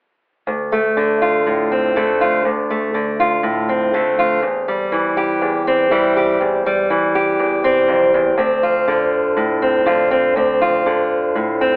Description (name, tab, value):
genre	folk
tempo	121 BPM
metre	4/4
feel	straight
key	D minor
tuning	A4 = 439 Hz
part	fingerpicked steel-string acoustic guitar	accompaniment	0.5-11.8 s	D2 to G4	-14 LUFS	equal	none
room	moderate large studio reverb, RT60 1.2 s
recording	telephone sound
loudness	-14 LUFS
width	side -39 dB against mid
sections	0.5-8.4 A section; 8.4-11.8 B section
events	none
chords	0.5 Dm7; 4.4 C/E; 8.4 Dm7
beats	| 0.47 0.96 1.46 1.95 | 2.45 2.94 3.44 3.93 | 4.43 4.92 5.42 5.91 | 6.41 6.90 7.39 7.89 | 8.38 8.88 9.37 9.87 | 10.36 10.86 11.35